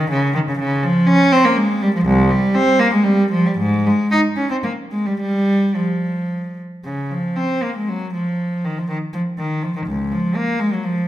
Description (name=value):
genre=classical, baroque-style suite movement for unaccompanied cello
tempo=105-125 BPM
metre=3/4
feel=rubato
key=F minor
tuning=A4 = 442 Hz
part: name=rich cello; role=solo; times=0.0-11.1 s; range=C2 to Eb4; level=-16 LUFS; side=equal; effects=none
room=wet recital hall reverb, RT60 1.6 s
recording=minimal, uncompressed stereo recording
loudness=-16 LUFS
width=side -13 dB against mid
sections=0.0-6.9 A section; 6.9-11.1 A section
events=none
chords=none